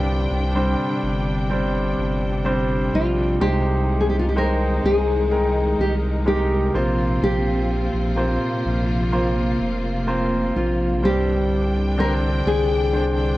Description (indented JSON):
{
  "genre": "pop",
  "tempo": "63 BPM",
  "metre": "4/4",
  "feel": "straight",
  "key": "C minor",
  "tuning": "A4 = 440 Hz",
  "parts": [
    { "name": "nylon-string guitar", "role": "melody", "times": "0.0-13.4 s", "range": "F4 to Bb4", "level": "-23 LUFS", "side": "left 1 dB", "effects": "none" },
    { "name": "clear concert grand piano", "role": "accompaniment", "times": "0.0-13.4 s", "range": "G2 to G5", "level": "-24 LUFS", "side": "equal", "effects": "none" },
    { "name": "warm studio string section", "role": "sustained chords", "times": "0.0-13.4 s", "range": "Bb2 to G5", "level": "-26 LUFS", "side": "equal", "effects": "none" },
    { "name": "saturated sub bass", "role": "bass", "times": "0.0-13.4 s", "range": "F1 to C2", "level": "-23 LUFS", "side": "equal", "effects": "none" }
  ],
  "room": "moderate scoring stage reverb, RT60 1.8 s, small room ambience",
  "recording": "worn, warbling old tape, cassette tape, warbly pitch drift",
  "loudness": "-18 LUFS",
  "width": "side -16 dB against mid",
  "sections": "0.0-13.4 A section",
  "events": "none",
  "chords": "0.0 Csus2; 3.4 Abmaj7/C; 6.7 Bbsus2; 11.0 Csus2"
}